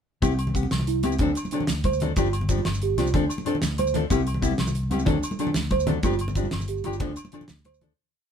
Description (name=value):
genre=highlife guitar band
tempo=124 BPM (dotted quarters)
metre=12/8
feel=straight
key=C major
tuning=A4 = 439 Hz
part: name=nylon-string guitar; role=accompaniment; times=0.2-7.9 s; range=F3 to A4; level=-29 LUFS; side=left 8 dB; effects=none
part: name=celesta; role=arpeggios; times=0.2-7.8 s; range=C4 to C5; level=-28 LUFS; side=right 4 dB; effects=none
part: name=fingered electric bass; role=bass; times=0.2-7.9 s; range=G1 to D2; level=-28 LUFS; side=equal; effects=none
part: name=damped 70s drum kit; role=drums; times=0.2-7.9 s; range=hi-hat, kick drum, snare drum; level=-28 LUFS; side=equal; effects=none
part: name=agogo bells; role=percussion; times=0.2-7.8 s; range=none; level=-39 LUFS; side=left 1 dB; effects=none
part: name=congas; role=percussion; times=0.2-7.9 s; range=none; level=-31 LUFS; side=equal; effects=none
part: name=maracas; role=percussion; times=0.2-7.8 s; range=none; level=-40 LUFS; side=right 4 dB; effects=none
room=moderate studio reverb, RT60 0.7 s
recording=band playing live in one room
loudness=-22 LUFS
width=side -8 dB against mid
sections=0.2-8.0 groove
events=fade-out 6.0-8.0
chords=0.2 Cmaj7; 1.2 D7; 2.2 G7sus4; 3.1 Dm7; 4.1 Cmaj7; 5.1 D7; 6.0 G7sus4; 7.0 Dm7